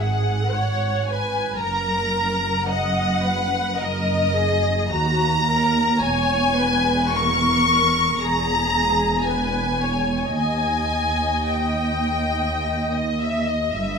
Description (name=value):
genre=classical, slow romantic movement for string orchestra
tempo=50-57 BPM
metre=4/4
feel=rubato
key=unclear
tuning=A4 = 441 Hz
part: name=warm symphonic violin section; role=melody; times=0.0-14.0 s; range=D#5 to C#6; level=-23 LUFS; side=left 3 dB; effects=none
part: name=warm symphonic violin section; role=second line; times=0.0-14.0 s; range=D#5 to C#6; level=-27 LUFS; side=left 1 dB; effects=none
part: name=rich symphonic viola section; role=accompaniment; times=0.0-14.0 s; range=F#4 to D#5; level=-27 LUFS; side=equal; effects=none
part: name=warm symphonic cello section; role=bass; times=0.0-14.0 s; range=D#2 to G#2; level=-26 LUFS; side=right 2 dB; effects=none
part: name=warm symphonic double bass section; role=bass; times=0.0-14.0 s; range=E1 to D#2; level=-27 LUFS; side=right 2 dB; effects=none
room=moderate recital hall reverb, RT60 1.6 s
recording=none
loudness=-18 LUFS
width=side -5 dB against mid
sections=0.0-14.0 A section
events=none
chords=0.0 G#m; 1.6 D#m/F#; 6.0 C#m/E; 10.4 D#